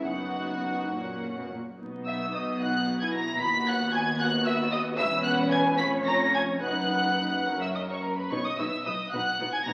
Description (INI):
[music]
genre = quick classical-period movement for string orchestra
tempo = 68-77 BPM (dotted quarters)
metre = 6/8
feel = rubato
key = B major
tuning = A4 = 440 Hz
[part]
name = warm symphonic violin section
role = melody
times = 0.0-9.7 s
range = F#5 to B6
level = -32 LUFS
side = equal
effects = none
[part]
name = dark symphonic viola section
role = accompaniment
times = 0.0-9.7 s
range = A#3 to C#5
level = -34 LUFS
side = equal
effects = none
[part]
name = dark symphonic double bass section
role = bass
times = 0.0-9.7 s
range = E1 to D#2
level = -40 LUFS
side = equal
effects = none
[part]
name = warm symphonic cello section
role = bass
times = 0.0-9.7 s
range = D#2 to B2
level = -36 LUFS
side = equal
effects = none
[part]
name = warm studio violin section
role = second line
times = 0.1-9.7 s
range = F#4 to B5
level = -34 LUFS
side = equal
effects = none
[sound]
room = wet recital hall reverb, RT60 1.4 s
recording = very old 78 rpm record, vinyl crackle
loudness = -27 LUFS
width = mono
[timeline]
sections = 0.0-1.8 A section; 1.8-9.7 B section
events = none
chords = 0.1 B/F#; 0.9 F#; 1.8 B; 3.4 B/D#; 5.0 C#m7/E; 5.8 C#/E#; 6.6 B/F#; 7.5 F#; 8.3 B